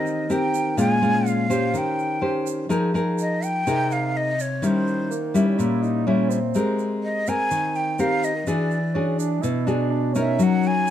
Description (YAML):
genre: bossa nova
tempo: 125 BPM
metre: 4/4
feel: straight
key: F minor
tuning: A4 = 440 Hz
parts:
  - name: breathy jazz flute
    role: melody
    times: 0.0-10.9 s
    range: C5 to Ab5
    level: -25 LUFS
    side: right 1 dB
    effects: none
  - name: nylon-string guitar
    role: accompaniment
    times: 0.0-10.9 s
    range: Bb2 to C5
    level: -21 LUFS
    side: left 2 dB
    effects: none
  - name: egg shaker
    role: percussion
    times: 0.1-10.9 s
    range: none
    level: -40 LUFS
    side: right 12 dB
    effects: none
  - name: mellow bassoon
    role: second line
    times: 5.1-10.7 s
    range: Bb3 to Fb4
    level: -28 LUFS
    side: right 9 dB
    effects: none
room: light reverb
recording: dark, warm production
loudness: -20 LUFS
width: side -10 dB against mid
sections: 0.0-2.7 A section; 2.7-10.9 B section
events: none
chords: 0.0 Abmaj9 (rootless); 0.8 Bbm7; 1.7 Eb6; 2.7 Fm11; 4.6 Eb7b9; 6.5 Abmaj9; 8.5 E9; 10.4 Gb6